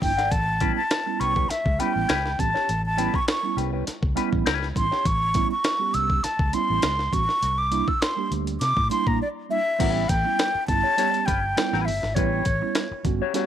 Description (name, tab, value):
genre	funk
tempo	101 BPM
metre	4/4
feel	straight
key	A mixolydian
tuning	A4 = 440 Hz
part	breathy concert flute	melody	0.0-13.0 s	C#5 to E6	-24 LUFS	equal	none
part	semi-hollow electric guitar	accompaniment	0.0-5.1, 9.8-13.5 s	C#4 to F#5	-30 LUFS	left 13 dB	wah
part	mellow tine electric piano	stabs	0.0-13.5 s	G3 to G4	-30 LUFS	right 13 dB	medium stereo tremolo
part	vintage muted fingered electric bass	bass	0.0-13.2 s	G1 to C3	-28 LUFS	equal	none
part	breakbeat sampler-style drum kit	drums	0.0-13.5 s	crash cymbal, hi-hat, kick drum, snare drum	-26 LUFS	equal	none
room	light reverb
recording	1960s-style stereo with parts hard left and right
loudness	-21 LUFS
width	side -10 dB against mid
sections	0.0-9.8 A section; 9.8-13.5 B section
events	flute solo 0.0-9.8; break 9.2-9.8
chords	0.3 A9; 7.4 C9; 9.8 A9